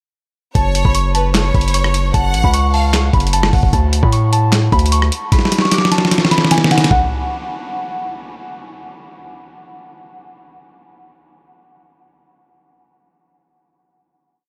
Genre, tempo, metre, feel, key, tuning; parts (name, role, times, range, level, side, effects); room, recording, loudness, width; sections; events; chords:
hip hop, trap; 151 BPM; 4/4; half-time; F# minor; A4 = 439 Hz
muted felt-like synth keys; melody; 0.5-8.1 s; F#5 to D6; -23 LUFS; equal; chorus, low-pass filter, tape echo
rich studio violin section; second line; 0.6-2.9 s; B4 to F#5; -27 LUFS; equal; tape echo
distorted 808-style bass; bass; 0.6-5.1 s; F#1 to A2; -18 LUFS; equal; distortion
dusty soul sampler-style drum kit; drums; 0.6-7.0 s; handclaps, hi-hat, kick drum, rim click, snare drum, toms; -18 LUFS; equal
light reverb, digital ambience; -15 LUFS; mono
0.6-6.9 hook; 6.9-10.1 final note
drum fill 5.3-6.9
0.6 F#m; 3.7 D5; 5.3 N.C.